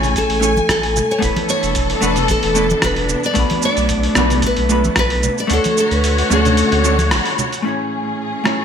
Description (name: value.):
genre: sunset chillout.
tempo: 112 BPM.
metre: 4/4.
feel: swing 54% on 16ths.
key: A major.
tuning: A4 = 438 Hz.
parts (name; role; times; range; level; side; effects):
nylon-string guitar; melody; 0.0-7.4 s; A4 to D5; -20 LUFS; equal; ping-pong delay.
vintage hollow-body jazz guitar; accompaniment; 0.0-8.6 s; A3 to C#5; -21 LUFS; equal; auto-pan, ping-pong delay.
dark studio string section; sustained chords; 0.0-8.6 s; A2 to G#5; -21 LUFS; left 2 dB; none.
warm sub bass; bass; 0.0-7.2 s; E1 to D2; -20 LUFS; equal; none.
dusty soul sampler-style drum kit; drums; 0.0-8.6 s; hi-hat, rim click, shaker; -22 LUFS; right 2 dB; overdrive, gated reverb.
congas; percussion; 0.0-7.5 s; none; -27 LUFS; right 2 dB; none.
electronic kick drum; drums; 0.2-5.1 s; none; -25 LUFS; equal; none.
room: moderate plate reverb, RT60 2.0 s.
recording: bright 1980s-style digital production.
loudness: -14 LUFS.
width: side -7 dB against mid.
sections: 0.0-7.7 A section.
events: kick drops out 5.5-7.7; band accent 7.1.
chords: 0.0 Amaj7; 1.2 E7sus4; 3.4 Bm7; 5.5 Dmaj7; 7.7 Amaj7.